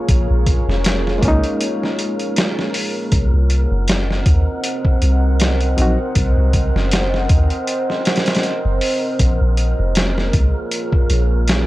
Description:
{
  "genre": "trip hop",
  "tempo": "79 BPM",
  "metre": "4/4",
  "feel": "swing 55% on 16ths",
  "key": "Bb minor",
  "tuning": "A4 = 441 Hz",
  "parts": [
    { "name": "deep dark ambient pad", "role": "sustained chords", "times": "0.0-11.7 s", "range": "Bb3 to Gb5", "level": "-23 LUFS", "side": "equal", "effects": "chorus, built-in reverb" },
    { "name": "wind-like tuned noise texture", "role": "texture", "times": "0.0-11.7 s", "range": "Bb4", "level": "-30 LUFS", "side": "right 2 dB", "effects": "built-in reverb" },
    { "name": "soft 808-style bass", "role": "bass", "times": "0.1-11.7 s", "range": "F1 to Eb2", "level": "-16 LUFS", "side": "equal", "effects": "none" },
    { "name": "trip hop sampler-style drum kit", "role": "drums", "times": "0.1-11.7 s", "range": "hi-hat, kick drum, snare drum", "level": "-18 LUFS", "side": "equal", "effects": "none" },
    { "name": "barky reed electric piano", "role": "accompaniment", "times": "1.2-6.0 s", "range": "Gb3 to Gb4", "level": "-22 LUFS", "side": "equal", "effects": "harmonic tremolo, tape echo" }
  ],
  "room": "digital ambience",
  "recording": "dry, gritty hardware recording, cassette tape",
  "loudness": "-15 LUFS",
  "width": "side -17 dB against mid",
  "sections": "0.0-11.7 A section",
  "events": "none",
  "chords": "0.0 Bbm7; 3.1 Cdim; 9.2 Bbm7"
}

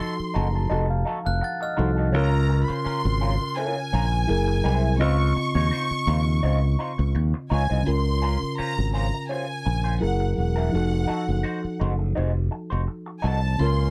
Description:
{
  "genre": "soul",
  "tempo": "84 BPM",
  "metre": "4/4",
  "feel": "swing 54% on 16ths",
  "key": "Db major",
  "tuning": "A4 = 439 Hz",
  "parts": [
    { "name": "warm studio violin section", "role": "melody", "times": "0.0-13.9 s", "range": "Gb5 to Db6", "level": "-32 LUFS", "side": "equal", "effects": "none" },
    { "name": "reed electric piano", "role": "accompaniment", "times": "0.0-13.9 s", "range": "Db3 to Bb5", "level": "-30 LUFS", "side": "equal", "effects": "none" },
    { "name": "electric guitar through a small old amp", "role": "riff", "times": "0.0-13.5 s", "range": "Db4 to Db5", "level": "-34 LUFS", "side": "equal", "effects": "wah" },
    { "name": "modern bright fingered electric bass", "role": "bass", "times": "0.2-13.9 s", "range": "Fb1 to Eb2", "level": "-25 LUFS", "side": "equal", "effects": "none" },
    { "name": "glockenspiel with brass mallets", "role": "texture", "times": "1.3-2.1 s", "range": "F6 to A6", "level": "-40 LUFS", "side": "equal", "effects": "none" },
    { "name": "warm horn section", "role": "stabs", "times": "13.6-13.9 s", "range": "Bb3 to F4", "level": "-36 LUFS", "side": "equal", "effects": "none" }
  ],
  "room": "little or no reverb",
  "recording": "dry, close 1970s-style studio recording",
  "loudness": "-24 LUFS",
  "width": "mono",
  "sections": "0.0-7.9 A section; 7.9-13.9 B section",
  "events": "reed electric piano fill 0.0-2.1",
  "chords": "0.0 F7b9; 2.1 Db6; 4.3 Gb9; 5.0 Dbmaj9; 7.9 Db6; 10.0 Gb9; 10.7 F7b9"
}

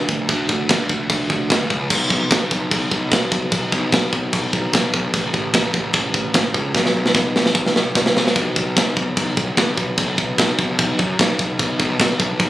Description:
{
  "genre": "heavy metal",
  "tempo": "148 BPM",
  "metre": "4/4",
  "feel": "straight",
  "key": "B minor",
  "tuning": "A4 = 442 Hz",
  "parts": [
    { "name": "fuzz picked electric bass", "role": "bass", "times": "0.0-12.5 s", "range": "A1 to F#2", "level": "-21 LUFS", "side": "equal", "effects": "overdrive" },
    { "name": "tight metal drum kit", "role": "drums", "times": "0.1-12.5 s", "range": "china cymbal, crash cymbal, kick drum, snare drum", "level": "-18 LUFS", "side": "equal", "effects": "none" }
  ],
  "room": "little or no reverb",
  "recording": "recorded on a phone in the room, studio ambience",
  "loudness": "-16 LUFS",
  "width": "side -15 dB against mid",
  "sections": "0.0-8.4 A section; 8.4-12.5 B section",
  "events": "drum fill 6.7-8.4",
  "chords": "none"
}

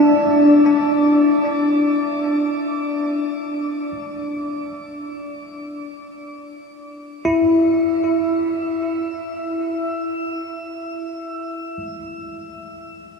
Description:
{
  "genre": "ambient",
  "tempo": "free time",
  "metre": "none",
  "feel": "none",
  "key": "unclear",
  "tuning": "A4 = 440 Hz",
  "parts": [
    { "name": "bell-like tine electric piano", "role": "solo", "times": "0.0-13.2 s", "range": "D4 to E4", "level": "-18 LUFS", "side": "left 1 dB", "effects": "analog chorus, ping-pong delay" }
  ],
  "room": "wet shimmer reverb, RT60 8.1 s",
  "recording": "none",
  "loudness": "-17 LUFS",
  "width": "side -4 dB against mid",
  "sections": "0.0-7.2 A section; 7.2-11.4 B section",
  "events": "none",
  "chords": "0.0 Cadd9 (rootless); 7.2 N.C."
}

